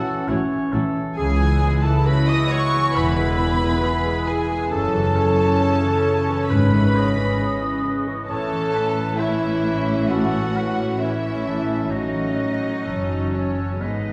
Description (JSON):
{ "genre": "cinematic, emotional film score for orchestra", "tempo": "67 BPM", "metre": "4/4", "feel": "rubato", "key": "unclear", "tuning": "A4 = 440 Hz", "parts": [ { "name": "dark studio violin section", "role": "melody", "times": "0.0-14.1 s", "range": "C#5 to D#6", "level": "-33 LUFS", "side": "equal", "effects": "none" }, { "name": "clear clarinet", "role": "second line", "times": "0.0-14.1 s", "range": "C#4 to D#5", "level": "-33 LUFS", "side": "equal", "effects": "none" }, { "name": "mellow hollow silver concert flute", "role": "second line", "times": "0.0-14.1 s", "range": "C#5 to D#6", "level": "-32 LUFS", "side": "equal", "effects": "none" }, { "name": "warm oboe", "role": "second line", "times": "0.0-14.1 s", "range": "E4 to D#5", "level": "-33 LUFS", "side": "equal", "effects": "none" }, { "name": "warm studio violin section", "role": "second line", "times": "0.0-14.1 s", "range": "C#4 to D#5", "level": "-30 LUFS", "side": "equal", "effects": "none" }, { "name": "warm French horn section", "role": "sustained chords", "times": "0.0-14.1 s", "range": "E3 to C#4", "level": "-31 LUFS", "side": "equal", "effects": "none" }, { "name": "concert harp", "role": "arpeggios", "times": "0.0-14.1 s", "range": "E2 to C#6", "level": "-30 LUFS", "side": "equal", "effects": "none" }, { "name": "warm studio viola section", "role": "accompaniment", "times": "0.3-14.1 s", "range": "C#3 to E4", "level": "-29 LUFS", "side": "equal", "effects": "none" }, { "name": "dark studio double bass section", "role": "bass", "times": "0.3-14.1 s", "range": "E1 to C#2", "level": "-28 LUFS", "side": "equal", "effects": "none" }, { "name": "warm studio cello section", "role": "bass", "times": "0.3-14.1 s", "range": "C#2 to A2", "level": "-30 LUFS", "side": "equal", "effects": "none" }, { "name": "timpani", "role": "percussion", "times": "6.5-7.8 s", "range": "none", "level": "barely audible", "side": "none", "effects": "none" } ], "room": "wet scoring stage reverb, RT60 1.8 s", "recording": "heard from further back in the room", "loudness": "-21 LUFS", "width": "mono", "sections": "0.0-14.1 A section", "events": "none", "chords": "0.0 F#m7/A; 1.2 C#m7; 2.9 E; 4.7 F#m7; 6.5 C#m7/G#; 8.3 A; 11.9 F#m7/A" }